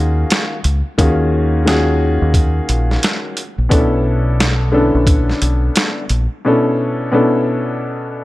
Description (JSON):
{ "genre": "hip hop, boom-bap hip-hop", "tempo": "88 BPM", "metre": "4/4", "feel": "swing 61% on 16ths", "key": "unclear", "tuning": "A4 = 440 Hz", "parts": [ { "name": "dark concert grand piano", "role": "accompaniment", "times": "0.0-8.2 s", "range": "B2 to A4", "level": "-16 LUFS", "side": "left 1 dB", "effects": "high-pass filter, low-pass filter" }, { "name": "deep dub fingered electric bass", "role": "bass", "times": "0.0-6.3 s", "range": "Bb1 to Eb2", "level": "-16 LUFS", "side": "equal", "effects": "none" }, { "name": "boom bap sampler-style drum kit", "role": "drums", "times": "0.3-6.3 s", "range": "hi-hat, kick drum, snare drum", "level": "-16 LUFS", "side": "equal", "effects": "none" } ], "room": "light reverb, digital ambience", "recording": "none", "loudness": "-13 LUFS", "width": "side -17 dB against mid", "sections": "0.0-8.2 A section", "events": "none", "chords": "0.0 Ebm11; 3.7 Bm11" }